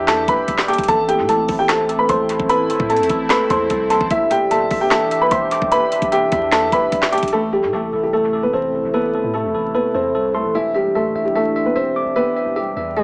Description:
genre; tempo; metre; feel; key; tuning
hip hop, trap; 149 BPM; 4/4; half-time; A minor; A4 = 440 Hz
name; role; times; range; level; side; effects
dark baby grand piano; melody; 0.0-13.0 s; E3 to C6; -18 LUFS; equal; dub echo
tine electric piano; accompaniment; 0.0-13.0 s; A4 to D6; -20 LUFS; equal; dub echo
sweeping resonant pad; sustained chords; 0.0-13.0 s; C3 to G4; -26 LUFS; equal; chorus, phaser
long sustained 808-style bass; bass; 0.0-13.0 s; D1 to A2; -32 LUFS; equal; none
trap drum kit; drums; 0.1-7.3 s; handclaps, hi-hat, kick drum, snare drum; -22 LUFS; equal; dub echo
room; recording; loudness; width
light reverb, digital ambience; echo-heavy mix, vinyl crackle, tape stop, small speaker sound; -15 LUFS; side -32 dB against mid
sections
0.0-7.3 A section; 7.3-13.0 B section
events
none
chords
0.0 Em7; 0.9 Am; 4.1 Em7; 7.3 Am; 10.5 Em7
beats
0.08 0.48 | 0.88 1.29 1.69 2.09 | 2.50 2.90 3.30 3.70 | 4.11 4.51 4.91 5.31 | 5.72 6.12 6.52 6.92 | 7.33 7.73 8.13 8.54 | 8.94 9.34 9.74 10.15 | 10.55 10.95 11.35 11.76 | 12.16 12.56 12.96

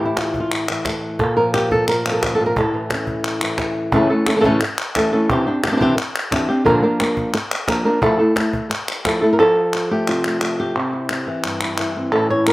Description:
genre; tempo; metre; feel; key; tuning
flamenco; 176 BPM; 4/4; straight; unclear; A4 = 440 Hz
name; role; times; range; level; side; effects
flamenco guitar; melody; 0.0-12.5 s; G2 to C#5; -17 LUFS; equal; none
cajon; percussion; 0.0-9.2 s; none; -27 LUFS; right 1 dB; none
palmas hand claps; percussion; 0.2-12.5 s; none; -24 LUFS; equal; none
room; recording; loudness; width
little or no reverb; recorded outdoors, with no room sound; -16 LUFS; side -18 dB against mid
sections
0.0-3.9 A section; 3.9-9.4 B section; 9.4-12.5 C section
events
none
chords
0.0 A5; 1.2 Bb5; 2.6 A; 5.3 Cadd9; 6.7 Bb; 8.0 Fmaj7; 9.4 F; 10.8 C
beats
0.17 0.51 0.85 | 1.20 1.54 1.88 2.22 | 2.57 2.91 3.25 3.59 | 3.93 4.27 4.62 4.96 | 5.30 5.64 5.98 6.32 | 6.66 7.00 7.34 7.68 | 8.03 8.37 8.71 9.05 | 9.39 9.73 10.07 10.42 | 10.76 11.10 11.44 11.78 | 12.12 12.47

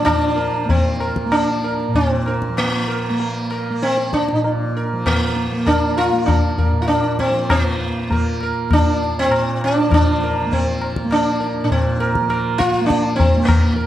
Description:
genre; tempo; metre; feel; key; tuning
indian classical, Hindustani; 98 BPM; 4/4; straight; Bb raga hamsadhwani; A4 = 439 Hz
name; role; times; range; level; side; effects
sitar; melody; 0.0-13.9 s; Bb3 to Bb4; -18 LUFS; equal; none
tanpura; drone; 0.0-13.9 s; Bb2 to Bb3; -23 LUFS; right 1 dB; none
tabla; percussion; 0.1-13.7 s; none; -20 LUFS; left 1 dB; none
room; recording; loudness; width
moderate concert hall reverb, RT60 1.9 s; dark, warm production; -16 LUFS; side -12 dB against mid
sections
0.0-7.5 A section; 7.5-13.9 B section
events
speeding up 0.0-13.9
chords
none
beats
| 0.06 0.69 1.32 1.94 | 2.57 3.19 3.81 4.43 | 5.05 5.67 6.28 6.89 | 7.50 8.11 8.72 9.32 | 9.92 10.52 11.12 11.72 | 12.31 12.90 13.49

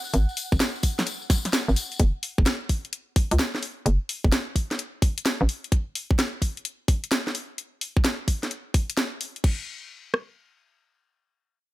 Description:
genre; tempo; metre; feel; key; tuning
UK garage, two-step garage; 129 BPM; 4/4; swing 66% on 16ths; unclear; A4 = 442 Hz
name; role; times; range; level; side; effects
soft string machine; sustained chords; 0.0-2.0 s; F#5; -43 LUFS; right 2 dB; ensemble chorus, sidechain pumping
hollow knocking FM bass; bass; 0.1-5.5 s; F#1 to C#2; -22 LUFS; equal; sidechain pumping
garage drum kit; drums; 0.1-9.6 s; crash cymbal, hi-hat, snare drum; -26 LUFS; equal; none
tambourine; percussion; 0.1-2.0 s; none; -33 LUFS; left 4 dB; none
garage drum kit; drums; 0.5-10.3 s; kick drum, rim click; -21 LUFS; equal; none
room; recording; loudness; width
little or no reverb; none; -23 LUFS; side -17 dB against mid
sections
0.0-9.4 A section; 9.4-11.7 B section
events
none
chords
0.0 G#7(no3); 2.0 N.C.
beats
| 0.14 0.60 1.07 1.53 | 2.00 2.46 2.93 3.39 | 3.86 4.32 4.79 5.25 | 5.72 6.18 6.65 7.11 | 7.58 8.04 8.51 8.97 | 9.44 9.90

